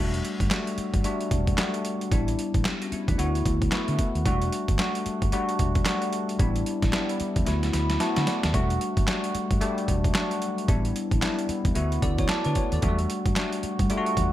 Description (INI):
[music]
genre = R&B, new jack swing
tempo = 112 BPM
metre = 4/4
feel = swing 61% on 16ths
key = E minor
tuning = A4 = 440 Hz
[part]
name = bell-like tine electric piano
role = accompaniment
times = 0.0-14.3 s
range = F#3 to B5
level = -27 LUFS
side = left 1 dB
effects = analog chorus
[part]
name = vintage muted fingered electric bass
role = bass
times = 0.0-14.3 s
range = E1 to D3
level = -28 LUFS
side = equal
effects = none
[part]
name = boom bap sampler-style drum kit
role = drums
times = 0.1-14.3 s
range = handclaps, hi-hat, kick drum, snare drum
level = -26 LUFS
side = equal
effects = overdrive
[sound]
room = moderate plate reverb, RT60 1.4 s, digital ambience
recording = bright 1980s-style digital production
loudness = -23 LUFS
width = side -13 dB against mid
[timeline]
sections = 0.0-14.3 A section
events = drum fill 7.5-8.5; tine electric piano fill 7.5-8.5, 11.8-12.8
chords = 0.0 Em11; 2.1 A7sus4; 3.2 D69; 4.3 Em11; 6.4 A7sus4; 7.5 D69; 8.5 Em11; 10.7 A7sus4; 11.8 D69; 12.8 Em11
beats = 0.51 1.04 1.58 | 2.11 2.65 3.18 3.72 | 4.25 4.79 5.33 5.86 | 6.40 6.93 7.47 8.01 | 8.54 9.08 9.61 10.15 | 10.68 11.22 11.76 12.29 | 12.83 13.36 13.90